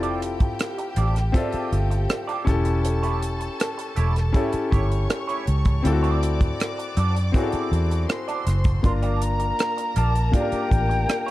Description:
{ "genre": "lush 1970s-style soul", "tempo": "80 BPM", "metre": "4/4", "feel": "straight", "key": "unclear", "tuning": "A4 = 440 Hz", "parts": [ { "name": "concert flute", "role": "melody", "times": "0.0-0.2, 8.8-11.3 s", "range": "D5 to C6", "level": "-27 LUFS", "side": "left 1 dB", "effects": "slapback echo" }, { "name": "warm studio violin section", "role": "second line", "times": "0.0-11.3 s", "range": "G4 to D6", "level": "-33 LUFS", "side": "equal", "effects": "none" }, { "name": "clear baby grand piano", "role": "accompaniment", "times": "0.0-11.3 s", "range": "Bb3 to E5", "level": "-28 LUFS", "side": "left 4 dB", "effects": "none" }, { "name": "electric guitar through a small old amp", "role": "riff", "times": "0.0-11.3 s", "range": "A3 to D5", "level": "-32 LUFS", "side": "right 6 dB", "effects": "wah" }, { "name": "vintage muted fingered electric bass", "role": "bass", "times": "0.0-11.0 s", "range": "E1 to F#2", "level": "-22 LUFS", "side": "equal", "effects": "none" }, { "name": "tight funk drum kit", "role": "drums", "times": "0.0-11.3 s", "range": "hi-hat, kick drum, rim click", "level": "-24 LUFS", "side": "equal", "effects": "none" } ], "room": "small room ambience", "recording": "dark, warm production", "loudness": "-20 LUFS", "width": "side -16 dB against mid", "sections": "0.0-11.3 A section", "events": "none", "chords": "0.0 Dm7/F; 2.5 A7/E; 5.8 D7; 8.8 Gm7" }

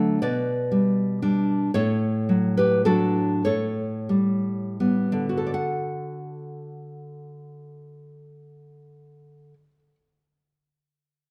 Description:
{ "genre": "romantic piece for solo classical guitar", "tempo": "27-42 BPM (dotted quarters)", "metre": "6/8", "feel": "rubato", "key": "D major", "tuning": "A4 = 440 Hz", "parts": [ { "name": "nylon-string guitar", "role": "solo", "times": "0.0-10.0 s", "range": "A2 to F#5", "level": "-24 LUFS", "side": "equal", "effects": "none" } ], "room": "moderate recital hall reverb, RT60 1.4 s", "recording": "none", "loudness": "-23 LUFS", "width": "mono", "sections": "0.0-5.6 A section; 5.6-9.9 B section", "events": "slowing down 0.0-5.6", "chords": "0.2 G/B; 1.7 D/A; 5.6 D" }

